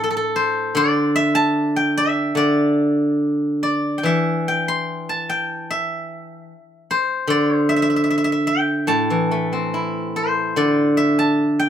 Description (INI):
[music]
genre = chinese traditional, Chinese solo plucked strings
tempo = 73 BPM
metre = 2/4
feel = uneven beats, rubato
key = A yu mode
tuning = A4 = 441 Hz
[part]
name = steel-string zither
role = solo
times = 0.0-11.7 s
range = A2 to C6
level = -17 LUFS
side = equal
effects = none
[sound]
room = moderate studio reverb, RT60 0.6 s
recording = band playing live in one room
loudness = -17 LUFS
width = side -9 dB against mid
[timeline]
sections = 0.0-10.6 A section; 10.6-11.7 B section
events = none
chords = none